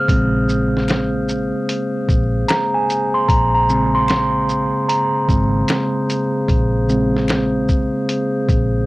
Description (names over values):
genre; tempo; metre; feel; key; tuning
lo-fi hip hop; 75 BPM; 4/4; swing 65% on 16ths; Bb minor; A4 = 440 Hz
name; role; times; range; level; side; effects
mellow tine electric piano; accompaniment; 0.0-8.9 s; Db3 to F6; -18 LUFS; right 1 dB; medium stereo tremolo, cassette tape
pipe organ, stopped flute; sustained chords; 0.0-8.9 s; Db3 to C5; -24 LUFS; left 2 dB; cassette tape
vintage muted fingered electric bass; bass; 0.1-8.8 s; Ab1 to Bb1; -20 LUFS; equal; none
lo-fi sampler-style drum kit; drums; 0.1-8.7 s; hi-hat, kick drum, shaker, snare drum; -19 LUFS; equal; cassette tape
finger snaps; percussion; 0.9-7.5 s; none; -31 LUFS; left 5 dB; none
room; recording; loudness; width
light reverb; home recording on cassette; -15 LUFS; side -20 dB against mid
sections
0.0-8.9 A section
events
tine electric piano solo 0.0-8.9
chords
0.0 Bbm9